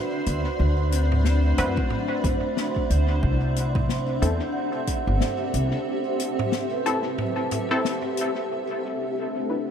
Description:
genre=ambient dub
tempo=91 BPM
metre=4/4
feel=swing 59% on 16ths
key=D mixolydian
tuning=A4 = 439 Hz
part: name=granular cloud pad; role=sustained chords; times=0.0-9.7 s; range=C4 to B5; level=-28 LUFS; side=left 1 dB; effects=built-in reverb
part: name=vibraphone with soft mallets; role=arpeggios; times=0.0-9.7 s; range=A3 to F#5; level=-32 LUFS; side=right 2 dB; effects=low-pass filter, tape echo
part: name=bubbling stepped-filter texture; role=texture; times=0.0-9.7 s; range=C4 to C5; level=-33 LUFS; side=right 5 dB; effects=chorus, built-in reverb
part: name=upright bass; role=bass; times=0.3-5.7 s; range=G1 to F#2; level=-22 LUFS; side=equal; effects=tube saturation
part: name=natural country drum kit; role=drums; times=0.3-8.3 s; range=hi-hat, snare drum, toms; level=-32 LUFS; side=left 2 dB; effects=dub echo
part: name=filtered dub chord stab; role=stabs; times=1.6-9.7 s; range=C4 to B4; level=-31 LUFS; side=left 2 dB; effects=chorus, dub echo
part: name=electronic kick drum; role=drums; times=1.8-5.0 s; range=none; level=-27 LUFS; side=equal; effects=none
room=light reverb, small room reverb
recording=none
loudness=-22 LUFS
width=side -8 dB against mid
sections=0.0-8.5 A section; 8.5-9.7 B section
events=filter sweep on vibraphone 8.5-9.7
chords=0.0 D13; 3.2 C6; 8.5 D13

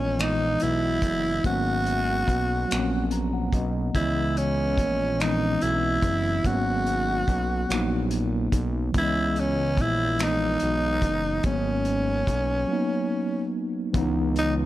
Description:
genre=slow six-eight R&B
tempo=48 BPM (dotted quarters)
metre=6/8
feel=straight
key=C# dorian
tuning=A4 = 439 Hz
part: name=raspy tenor saxophone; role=melody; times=0.0-14.5 s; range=C#4 to F#4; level=-26 LUFS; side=equal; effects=slapback echo
part: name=mellow tine electric piano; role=accompaniment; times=0.0-14.7 s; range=D#3 to A#5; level=-27 LUFS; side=equal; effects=medium stereo tremolo
part: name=fat analog bass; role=bass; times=0.0-14.7 s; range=F#1 to C#2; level=-28 LUFS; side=equal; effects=none
part: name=cloth-damped thuddy drum kit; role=drums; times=0.2-14.6 s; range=finger snaps, hi-hat, kick drum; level=-27 LUFS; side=equal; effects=none
room=light reverb, small room ambience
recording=none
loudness=-22 LUFS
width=side -15 dB against mid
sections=0.0-13.9 A section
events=tine electric piano fill 2.7-3.9; break 12.7-13.9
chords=0.0 C#m9 (rootless); 1.4 G#m11; 3.9 C#m9; 6.4 G#m11; 8.9 C#m9; 11.4 G#m11; 13.9 C#m9

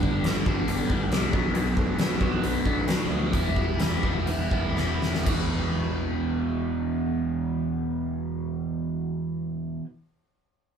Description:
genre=classic rock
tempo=116-138 BPM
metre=4/4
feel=straight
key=E minor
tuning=A4 = 440 Hz
part: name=overdriven electric guitar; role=riff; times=0.0-9.9 s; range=E2 to E4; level=-27 LUFS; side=right 2 dB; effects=phaser
part: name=picked electric bass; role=bass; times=0.0-9.8 s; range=E1 to D2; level=-31 LUFS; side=equal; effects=none
part: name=huge arena drum kit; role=drums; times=0.0-5.4 s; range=crash cymbal, hi-hat, kick drum, snare drum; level=-27 LUFS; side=left 1 dB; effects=none
room=moderate studio reverb, RT60 0.6 s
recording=band playing live in one room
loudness=-24 LUFS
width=side -7 dB against mid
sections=0.0-5.3 A section; 5.3-9.4 B section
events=slowing down 1.5-5.3; drum fill 4.8-5.3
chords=0.0 G; 1.3 Bm; 3.3 Em; 5.3 E5

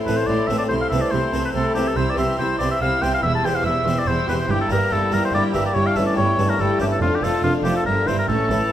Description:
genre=classical, baroque-style concerto movement with solo episodes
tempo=142 BPM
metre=3/4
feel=straight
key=unclear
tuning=A4 = 441 Hz
part: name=warm studio violin section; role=melody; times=0.0-8.7 s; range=E5 to E6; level=-34 LUFS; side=left 3 dB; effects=none
part: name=rich chamber violin section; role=second line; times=0.0-8.7 s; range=C4 to G4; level=-28 LUFS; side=left 1 dB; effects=none
part: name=dark chamber viola section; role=accompaniment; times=0.0-8.7 s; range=D3 to A3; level=-27 LUFS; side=equal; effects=none
part: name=harpsichord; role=accompaniment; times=0.0-8.7 s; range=E2 to F4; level=-25 LUFS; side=left 1 dB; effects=none
part: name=clear oboe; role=melody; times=0.1-8.7 s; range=F4 to A5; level=-22 LUFS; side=left 1 dB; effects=none
part: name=rich chamber cello section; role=bass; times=0.1-8.6 s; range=E2 to C3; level=-27 LUFS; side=right 2 dB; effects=none
part: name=rich chamber double bass section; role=bass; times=0.1-8.6 s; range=E1 to C2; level=-26 LUFS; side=right 3 dB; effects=none
room=moderate recital hall reverb, RT60 1.6 s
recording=none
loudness=-18 LUFS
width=side -11 dB against mid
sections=0.0-8.7 A section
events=none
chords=0.0 Am; 0.7 Am/C; 2.0 C; 3.2 C/E; 4.5 Edim/G; 5.8 A7/G; 7.0 Dm/F; 7.9 Em7b5/G

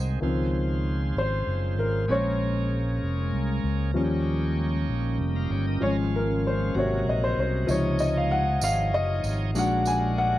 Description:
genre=slow gospel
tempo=64 BPM (dotted quarters)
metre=6/8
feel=straight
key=Db major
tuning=A4 = 439 Hz
part: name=warm upright piano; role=accompaniment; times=0.0-10.4 s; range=Ab2 to Ab5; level=-26 LUFS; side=left 2 dB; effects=none
part: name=bright tonewheel organ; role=sustained chords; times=0.0-10.4 s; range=C3 to Bb5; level=-36 LUFS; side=right 3 dB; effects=overdrive, slow rotary speaker
part: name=fingered electric bass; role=bass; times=0.0-10.4 s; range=F1 to Eb2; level=-26 LUFS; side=right 1 dB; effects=none
part: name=deep dark ambient pad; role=sustained chords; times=1.6-10.4 s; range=Db3 to Db5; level=-36 LUFS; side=equal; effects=none
part: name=tambourine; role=percussion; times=7.7-10.1 s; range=none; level=-37 LUFS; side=right 7 dB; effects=none
room=light reverb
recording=dry, close 1970s-style studio recording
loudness=-23 LUFS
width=side -14 dB against mid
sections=0.2-10.4 A section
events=upright piano solo 0.2-10.4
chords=0.2 Dbmaj7; 2.1 Bbm9; 4.0 Eb7; 5.8 Db/Ab; 6.8 Ab9; 7.7 Dbmaj9; 9.6 Bb7b13

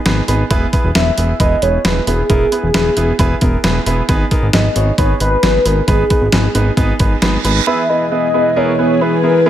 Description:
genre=synth-pop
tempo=134 BPM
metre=4/4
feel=straight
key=unclear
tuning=A4 = 440 Hz
part: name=clear concert grand piano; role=accompaniment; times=0.1-9.5 s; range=B3 to C#5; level=-19 LUFS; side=right 3 dB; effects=none
part: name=fat analog bass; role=bass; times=0.1-7.6 s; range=E1 to G#1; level=-16 LUFS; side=equal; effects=none
part: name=detuned 8-bit digital drum machine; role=drums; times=0.1-7.5 s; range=hi-hat, kick drum, snare drum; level=-16 LUFS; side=equal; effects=gated reverb
part: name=warm velvety synth lead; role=melody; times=1.0-9.5 s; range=G#4 to E5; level=-17 LUFS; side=left 1 dB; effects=chorus
part: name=reverse cymbal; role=sound effects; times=7.1-7.7 s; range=none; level=-23 LUFS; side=right 8 dB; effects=none
part: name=string machine, full ensemble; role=sustained chords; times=7.7-9.5 s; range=E3 to G#4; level=-16 LUFS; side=equal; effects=ensemble chorus
room=light reverb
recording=none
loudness=-12 LUFS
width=side -11 dB against mid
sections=0.0-7.7 A section; 7.7-9.5 B section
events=reverse cymbal 7.1-7.7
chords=0.0 G#m; 0.5 E; 4.1 G#m; 7.7 E

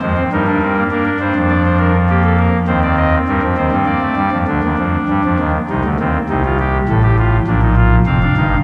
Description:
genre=classical, baroque-style 3-part fugue for pipe organ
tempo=101 BPM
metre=3/4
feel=straight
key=unclear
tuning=A4 = 440 Hz
part: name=pipe organ, soft reed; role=solo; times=0.0-8.6 s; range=F1 to F5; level=-15 LUFS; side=equal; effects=none
room=wet church reverb, RT60 2.7 s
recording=dark, warm production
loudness=-15 LUFS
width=mono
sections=0.0-4.5 A section; 4.5-8.6 B section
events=none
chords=0.3 Eb/G; 0.9 Bb; 2.1 Gm; 2.7 Cm7/Eb; 3.9 Bb; 4.5 G5/D; 5.7 Cm; 6.3 F/C; 7.5 Bb; 8.1 Dm7/F

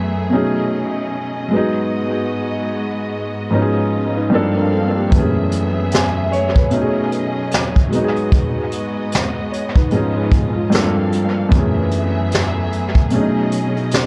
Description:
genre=lo-fi hip hop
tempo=75 BPM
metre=4/4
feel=swing 61% on 16ths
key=F# dorian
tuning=A4 = 441 Hz
part: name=felt-muted upright piano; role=accompaniment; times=0.0-14.1 s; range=F#2 to G#5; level=-20 LUFS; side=equal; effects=cassette tape, low-pass filter, dub echo
part: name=rich studio string section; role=sustained chords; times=0.0-14.1 s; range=F#2 to F5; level=-26 LUFS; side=equal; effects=low-pass filter
part: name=tine electric piano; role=second line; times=4.2-10.9 s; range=G#3 to C#5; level=-28 LUFS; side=equal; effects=low-pass filter, dub echo
part: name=vintage brush drum kit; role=drums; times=5.1-14.1 s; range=hi-hat, kick drum, snare drum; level=-20 LUFS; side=equal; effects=dub echo
room=light reverb, studio ambience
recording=echo-heavy mix, cassette tape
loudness=-18 LUFS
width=mono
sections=0.0-14.1 A section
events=none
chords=0.3 B13; 1.5 G#m7; 3.5 C#9/G#; 4.3 Gm11; 5.1 F#m11; 6.7 B13; 7.9 G#m7; 9.9 C#9/G#; 10.7 Gm11; 11.5 F#m11; 13.1 B13

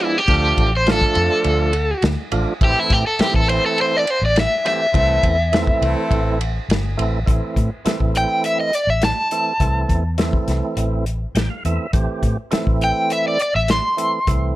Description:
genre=straight-eighth soul blues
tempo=103 BPM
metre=4/4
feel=straight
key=A minor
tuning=A4 = 440 Hz
part: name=crunchy overdriven guitar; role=melody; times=0.0-14.6 s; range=E4 to C6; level=-18 LUFS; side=equal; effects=tremolo
part: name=percussive tonewheel organ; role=accompaniment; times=0.0-14.6 s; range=E3 to G5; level=-24 LUFS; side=right 3 dB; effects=slow rotary speaker
part: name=clear horn section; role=sustained chords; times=0.3-6.4 s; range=A3 to A4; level=-31 LUFS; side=left 1 dB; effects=none
part: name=vintage muted fingered electric bass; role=bass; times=0.3-14.5 s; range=G1 to A2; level=-21 LUFS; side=equal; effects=none
part: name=warm soul drum kit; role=drums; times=0.3-14.4 s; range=hi-hat, kick drum, ride cymbal, snare drum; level=-21 LUFS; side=equal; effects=none
room=small room ambience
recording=none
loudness=-16 LUFS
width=side -16 dB against mid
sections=0.0-7.3 A section; 7.3-14.6 B section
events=overdriven electric guitar solo 0.0-7.3; tonewheel organ fill 11.1-11.9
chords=0.3 Dm; 2.6 Am

